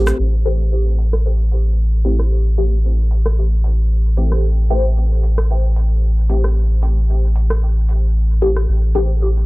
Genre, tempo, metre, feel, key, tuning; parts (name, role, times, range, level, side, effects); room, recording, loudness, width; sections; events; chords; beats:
dub techno; 113 BPM; 4/4; swing 55% on 16ths; A minor; A4 = 440 Hz
filtered dub chord stab; stabs; 0.0-9.1 s; E3 to G4; -23 LUFS; left 1 dB; phaser, dub echo
soft dub sub bass; bass; 0.0-9.5 s; A1; -14 LUFS; equal
soft vintage rhythm box; drums; 0.1-9.1 s; hi-hat, rim click; -27 LUFS; equal; low-pass filter on hats, low-pass filter on snare, dub echo
bongos; percussion; 8.9-9.1 s; -35 LUFS; right 4 dB
digital ambience; dry, gritty hardware recording, low-pass filter; -14 LUFS; side -22 dB against mid
0.2-9.5 A section
filter sweep on drum 0.2-9.5; filter sweep 0.2-9.5
0.2 Am7
| 0.19 0.72 1.25 1.78 | 2.31 2.84 3.38 3.91 | 4.44 4.97 5.50 6.03 | 6.56 7.09 7.62 8.15 | 8.68 9.21